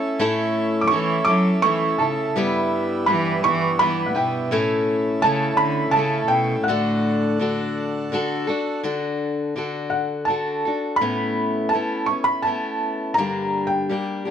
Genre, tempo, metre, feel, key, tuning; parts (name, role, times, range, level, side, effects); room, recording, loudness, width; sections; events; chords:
acoustic folk duo or small band; 83 BPM; 3/4; straight; D major; A4 = 440 Hz
picked steel-string acoustic guitar; accompaniment; 0.0-14.3 s; G2 to B4; -23 LUFS; left 2 dB
pedal harmonium; sustained chords; 0.0-8.8 s; G2 to F#5; -30 LUFS; right 3 dB
felt-muted upright piano; melody; 0.8-14.3 s; F#5 to D6; -21 LUFS; right 2 dB
warm cello; second line; 0.8-8.1 s; A2 to F#3; -25 LUFS; right 1 dB
light reverb; close, detailed microphones; -19 LUFS; side -8 dB against mid
0.0-8.8 A section; 8.8-14.3 B section
0.0 A; 2.4 Em/G; 4.5 A; 6.7 D; 11.0 Aadd9; 13.2 Gm